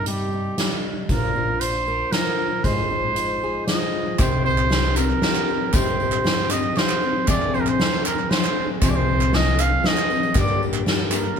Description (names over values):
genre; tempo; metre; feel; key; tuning
indie folk with a building arrangement; 117 BPM; 3/4; straight; C minor; A4 = 439 Hz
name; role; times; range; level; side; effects
mellow trumpet; melody; 0.0-11.4 s; G4 to F5; -24 LUFS; right 3 dB; none
fingerpicked steel-string acoustic guitar; accompaniment; 0.0-4.2 s; Ab2 to Bb4; -28 LUFS; left 2 dB; none
upright bass; bass; 0.0-11.3 s; Ab1 to G2; -26 LUFS; equal; none
soft-mallet drum kit; drums; 0.1-11.0 s; hi-hat, kick drum, ride cymbal, snare drum; -23 LUFS; equal; none
picked steel-string acoustic guitar; accompaniment; 4.2-11.4 s; F2 to Ab4; -26 LUFS; left 5 dB; none
group handclap; percussion; 4.2-11.4 s; none; -30 LUFS; right 5 dB; none
tambourine; percussion; 4.2-11.2 s; none; -37 LUFS; left 6 dB; none
room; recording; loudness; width
light reverb; band playing live in one room; -18 LUFS; side -7 dB against mid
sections
0.0-4.2 A section; 4.2-11.4 B section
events
none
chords
0.0 Cm7; 1.1 Bb; 2.6 Fm7/Ab; 4.2 Cm; 7.3 Fm; 10.4 Gm